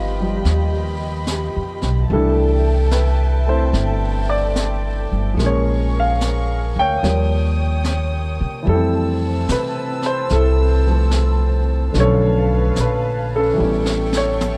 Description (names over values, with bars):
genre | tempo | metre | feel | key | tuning
jazz ballad | 73 BPM | 4/4 | swing 68% on 8ths | unclear | A4 = 441 Hz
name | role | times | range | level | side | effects
warm grand piano | accompaniment | 0.0-14.6 s | D3 to G5 | -23 LUFS | equal | none
warm studio string section | sustained chords | 0.0-14.6 s | C4 to E6 | -30 LUFS | equal | none
upright bass | bass | 0.0-14.6 s | G1 to C3 | -21 LUFS | equal | none
jazz brush drum kit | drums | 0.5-14.6 s | brushed snare drum, hi-hat, snare drum, toms | -32 LUFS | equal | none
room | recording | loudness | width
little or no reverb | dark, warm production, lossy compression artefacts | -18 LUFS | mono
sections
0.0-14.6 A section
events
drum fill 13.6-14.6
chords
0.0 Gaug7; 2.1 C6; 5.4 Bbm7; 7.0 D#9; 8.7 Fmaj7; 11.9 Bm7b5; 13.6 A7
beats
0.43 1.26 | 2.08 2.90 3.73 4.55 | 5.37 6.19 7.01 7.83 | 8.66 9.48 10.30 11.12 | 11.94 12.76 13.58 14.41